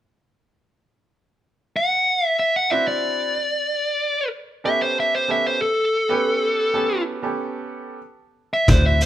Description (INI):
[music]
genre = electric blues shuffle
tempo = 124 BPM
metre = 4/4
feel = swing 68% on 8ths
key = A mixolydian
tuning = A4 = 440 Hz
[part]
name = dark smooth lead guitar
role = melody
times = 1.8-9.1 s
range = A4 to F#5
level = -19 LUFS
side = equal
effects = overdrive
[part]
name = bright upright piano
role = accompaniment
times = 2.7-9.0 s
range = B3 to B4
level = -26 LUFS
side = right 4 dB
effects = none
[part]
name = vintage muted fingered electric bass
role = bass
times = 8.7-9.0 s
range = D2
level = -18 LUFS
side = equal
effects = none
[part]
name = vintage drum kit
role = drums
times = 8.7-9.1 s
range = hi-hat, kick drum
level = -16 LUFS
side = equal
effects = none
[sound]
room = moderate large studio reverb, RT60 1.3 s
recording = band playing live in one room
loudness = -19 LUFS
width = side -12 dB against mid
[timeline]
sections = 0.9-9.1 A section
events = none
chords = 0.9 D9/C; 2.9 D9; 4.8 A9